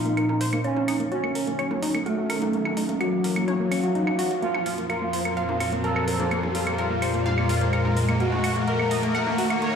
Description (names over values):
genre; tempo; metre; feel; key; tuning
melodic techno; 127 BPM; 4/4; straight; Bb harmonic minor; A4 = 438 Hz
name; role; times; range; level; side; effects
analog synth brass; melody; 0.0-9.8 s; Gb3 to Db5; -28 LUFS; equal; chorus, tape echo
dark detuned synth bell; second line; 0.0-9.8 s; Gb4 to Db6; -33 LUFS; equal; chorus, phaser, low-pass filter, ping-pong delay
evolving wavetable pad; sustained chords; 0.0-9.8 s; F2 to F5; -28 LUFS; equal; phaser, built-in reverb
riser; sound effects; 0.7-9.8 s; none; -32 LUFS; left 1 dB; none
analog pluck; arpeggios; 0.1-9.7 s; Bb3 to Gb5; -28 LUFS; equal; chorus, ping-pong delay
techno drum kit; drums; 0.1-9.7 s; claves, hi-hat, toms; -32 LUFS; right 1 dB; high-pass filter on hats, high-pass filter on toms, high-pass filter on perc
room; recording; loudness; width
wet lush hall reverb, RT60 2.2 s; played on a big sound system in a bare room, large studio reverb; -22 LUFS; side -7 dB against mid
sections
0.0-9.8 A section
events
build-up 0.0-9.8; filter sweep on synth pluck 0.0-9.8; filter sweep on analog polysynth 0.0-9.8; filter sweep on synth bell 0.0-9.8; riser 0.7-9.8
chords
0.0 Bbsus2; 0.6 Gb; 4.4 Bbsus2/F; 8.2 Ebm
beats
0.17 | 0.64 1.12 1.59 2.06 | 2.53 3.01 3.48 3.95 | 4.42 4.90 5.37 5.84 | 6.31 6.79 7.26 7.73 | 8.20 8.68 9.15 9.62